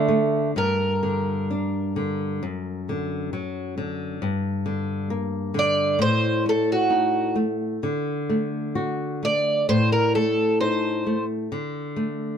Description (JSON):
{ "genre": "fado-style ballad", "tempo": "66 BPM", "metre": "2/4", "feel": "uneven beats, rubato", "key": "G harmonic minor", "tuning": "A4 = 440 Hz", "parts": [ { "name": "picked twelve-string acoustic guitar", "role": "melody", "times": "0.0-11.2 s", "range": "F#4 to D5", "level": "-23 LUFS", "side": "right 2 dB", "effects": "none" }, { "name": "mellow accordion", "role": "second line", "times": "0.0-0.5 s", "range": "A3", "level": "-23 LUFS", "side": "right 5 dB", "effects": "none" }, { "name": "flamenco guitar", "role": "accompaniment", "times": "0.0-12.4 s", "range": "F#2 to F#4", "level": "-24 LUFS", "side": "left 1 dB", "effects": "none" } ], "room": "light reverb", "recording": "close, detailed microphones", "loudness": "-22 LUFS", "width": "side -8 dB against mid", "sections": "0.6-12.4 A section", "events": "none", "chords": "0.0 D5; 0.6 Gm; 2.4 D/F#; 4.2 Gm; 6.0 Adim7; 7.8 D; 9.7 Adim; 11.5 D5" }